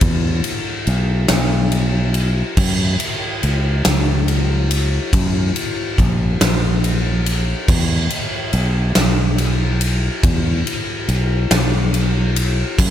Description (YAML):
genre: post-rock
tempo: 47 BPM (dotted quarters)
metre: 6/8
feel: straight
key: unclear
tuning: A4 = 440 Hz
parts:
  - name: fingered electric bass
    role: bass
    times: 0.0-12.9 s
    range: A#1 to F#2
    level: -17 LUFS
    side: equal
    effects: none
  - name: big rock drum kit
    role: drums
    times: 0.0-12.9 s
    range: crash cymbal, kick drum, ride cymbal, snare drum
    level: -18 LUFS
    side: left 1 dB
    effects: none
room: little or no reverb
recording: none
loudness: -15 LUFS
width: side -10 dB against mid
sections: 0.0-12.9 A section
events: none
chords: none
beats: | 0.03 1.31 | 2.59 3.87 | 5.14 6.42 | 7.70 8.97 | 10.25 11.52 | 12.80